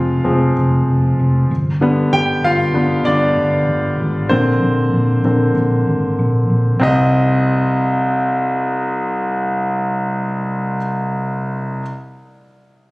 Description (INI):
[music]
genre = piano-driven pop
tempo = 96 BPM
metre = 4/4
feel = straight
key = C minor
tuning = A4 = 440 Hz
[part]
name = clear concert grand piano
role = accompaniment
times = 0.0-11.8 s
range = C2 to G5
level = -16 LUFS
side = equal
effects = none
[part]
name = vintage muted fingered electric bass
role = bass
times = 0.0-10.8 s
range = F1 to C2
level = -17 LUFS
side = equal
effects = none
[sound]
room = light reverb, small room reverb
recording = recorded on a phone in the room, studio reverb, compression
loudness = -14 LUFS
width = side -22 dB against mid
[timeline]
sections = 0.0-6.8 A section; 6.8-9.3 B section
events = grand piano solo 0.0-6.8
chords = 0.0 Fm; 1.5 G; 4.3 Bbadd9; 6.8 Cm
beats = 0.56 1.19 | 1.81 2.44 3.06 3.69 | 4.31 4.93 5.56 6.18 | 6.81 7.43 8.06 8.68